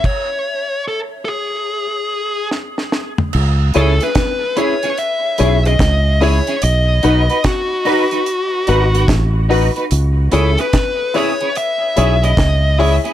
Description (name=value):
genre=roots reggae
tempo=73 BPM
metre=4/4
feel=swing 64% on 16ths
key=C# minor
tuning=A4 = 440 Hz
part: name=high-gain lead guitar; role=melody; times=0.0-12.9 s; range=F#4 to E5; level=-19 LUFS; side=left 1 dB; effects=distortion, dub echo
part: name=deep reggae drum kit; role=drums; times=0.0-13.1 s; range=crash cymbal, hi-hat, kick drum, snare drum, toms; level=-19 LUFS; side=right 1 dB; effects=none
part: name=fingered electric bass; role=bass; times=3.3-13.0 s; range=G#1 to C#2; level=-14 LUFS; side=equal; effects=none
part: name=clean electric guitar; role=accompaniment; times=3.7-13.1 s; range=C#4 to B4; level=-22 LUFS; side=right 3 dB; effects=ensemble chorus, dub echo
part: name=dark grand piano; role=stabs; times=3.7-13.0 s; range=D#4 to C#5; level=-19 LUFS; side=left 5 dB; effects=none
room=light reverb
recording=none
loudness=-13 LUFS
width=side -12 dB against mid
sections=0.0-3.3 A section; 3.3-13.1 B section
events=stop 0.0-3.3; drum fill 2.5-3.3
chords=0.0 N.C.; 3.3 C#m; 6.6 B; 9.9 C#m